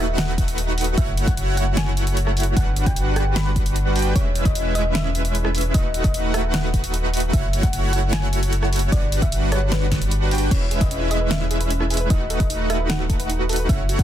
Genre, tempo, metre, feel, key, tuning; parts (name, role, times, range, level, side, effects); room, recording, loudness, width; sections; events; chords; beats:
future bass; 151 BPM; 4/4; half-time; A4 = 444 Hz
thumb-piano-like synth pluck; melody; 0.0-14.0 s; B4 to B5; -31 LUFS; equal; chorus, sidechain pumping, tape echo
soft supersaw; riff; 0.0-14.0 s; G3 to G5; -25 LUFS; right 1 dB; sidechain pumping
saturated sub bass; bass; 0.0-14.0 s; D#1 to G1; -22 LUFS; equal; sidechain pumping
pop drum kit; drums; 0.2-14.0 s; crash cymbal, hi-hat, rim click, snare drum; -27 LUFS; right 1 dB
electronic kick drum; drums; 0.4-14.0 s; -20 LUFS; equal
soft round pluck; arpeggios; 10.5-14.0 s; C#4 to B4; -31 LUFS; right 3 dB; chorus, sidechain pumping, dub echo
little or no reverb; dense, heavily limited modern master; -18 LUFS; side -11 dB against mid
0.0-14.0 A section
0.0 B7/D#; 1.0 F#m7; 2.6 Gmaj7; 4.2 E6; 5.7 B7/D#; 7.3 F#m7; 8.9 Gmaj7; 10.5 E6; 12.1 B7/D#
0.18 0.58 | 0.98 1.37 1.77 2.17 | 2.57 2.96 3.36 3.76 | 4.16 4.55 4.95 5.35 | 5.75 6.14 6.54 6.94 | 7.33 7.73 8.13 8.53 | 8.92 9.32 9.72 10.12 | 10.51 10.91 11.31 11.71 | 12.10 12.50 12.90 13.29 | 13.69